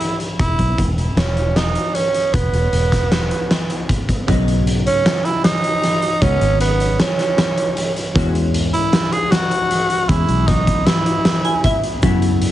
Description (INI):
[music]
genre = progressive instrumental, band music in an uneven meter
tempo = 155 BPM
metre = 5/4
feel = straight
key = E major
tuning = A4 = 438 Hz
[part]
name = raspy tenor saxophone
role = melody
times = 0.0-11.8 s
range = B3 to G#4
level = -20 LUFS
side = right 2 dB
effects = digital delay
[part]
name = oversized low-tuned drum kit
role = drums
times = 0.0-12.5 s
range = hi-hat, kick drum, snare drum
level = -19 LUFS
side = equal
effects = none
[part]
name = fingered electric bass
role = bass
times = 0.4-12.5 s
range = E1 to F#2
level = -18 LUFS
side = equal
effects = none
[part]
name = archtop guitar, miked and amplified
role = accompaniment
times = 4.3-12.5 s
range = C#3 to G#5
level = -23 LUFS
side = equal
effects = double-tracked left and right
[part]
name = tube shaker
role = percussion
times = 12.0-12.2 s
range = none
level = -40 LUFS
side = left 7 dB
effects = none
[sound]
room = light reverb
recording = heavily compressed radio sound, multiband compression, nothing above 10.5 kHz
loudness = -15 LUFS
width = side -13 dB against mid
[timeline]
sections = 0.0-4.3 A section; 4.3-12.5 B section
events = hollow-body jazz guitar fill 11.3-12.0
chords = 0.4 E5; 4.3 Badd9; 6.2 C#5; 8.2 E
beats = 0.01 | 0.40 0.79 1.17 1.56 1.95 | 2.34 2.73 3.11 3.50 3.89 | 4.28 4.67 5.05 5.44 5.83 | 6.22 6.60 6.99 7.38 7.77 | 8.15 8.54 8.93 9.31 9.70 | 10.09 10.48 10.86 11.25 11.64 | 12.03 12.41